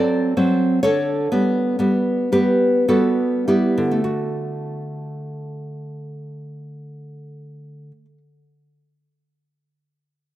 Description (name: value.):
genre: romantic piece for solo classical guitar.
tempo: 48-66 BPM.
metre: 3/4.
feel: rubato.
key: D major.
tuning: A4 = 439 Hz.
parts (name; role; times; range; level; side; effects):
nylon-string guitar; solo; 0.0-8.2 s; D3 to D5; -19 LUFS; equal; none.
room: light reverb, studio reverb.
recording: rough home demo mix.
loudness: -17 LUFS.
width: side -14 dB against mid.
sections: 0.0-4.0 A section; 4.0-7.2 B section.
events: slowing down 0.0-4.0.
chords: 0.0 D7; 0.8 G/D; 4.0 D.